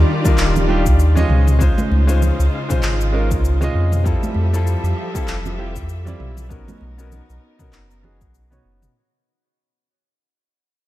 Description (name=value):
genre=sunset chillout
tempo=98 BPM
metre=4/4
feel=swing 57% on 16ths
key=unclear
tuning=A4 = 439 Hz
part: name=bright grand piano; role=accompaniment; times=0.0-8.9 s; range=G3 to Eb5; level=-24 LUFS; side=equal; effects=auto-pan, low-pass filter, tape echo
part: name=muted studio string section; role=sustained chords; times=0.0-8.9 s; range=Db3 to E5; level=-25 LUFS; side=left 1 dB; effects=low-pass filter
part: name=warm sub bass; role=bass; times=0.0-8.9 s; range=Eb1 to F2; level=-16 LUFS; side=equal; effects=none
part: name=deep house drum kit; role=drums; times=0.3-8.9 s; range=cabasa, handclaps, toms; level=-27 LUFS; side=equal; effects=small room ambience
part: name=electronic kick drum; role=drums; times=0.3-8.3 s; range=none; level=-20 LUFS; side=equal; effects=small room ambience
part: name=congas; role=percussion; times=0.6-8.2 s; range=none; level=-26 LUFS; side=right 3 dB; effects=none
room=light reverb, studio ambience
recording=dark, warm production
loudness=-15 LUFS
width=side -15 dB against mid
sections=0.0-9.0 A section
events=fade-out 0.0-9.0; filter sweep on grand piano 0.0-9.0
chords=0.0 Ebmaj9; 1.3 Dbmaj9; 4.1 Fmaj9; 6.5 Bmaj9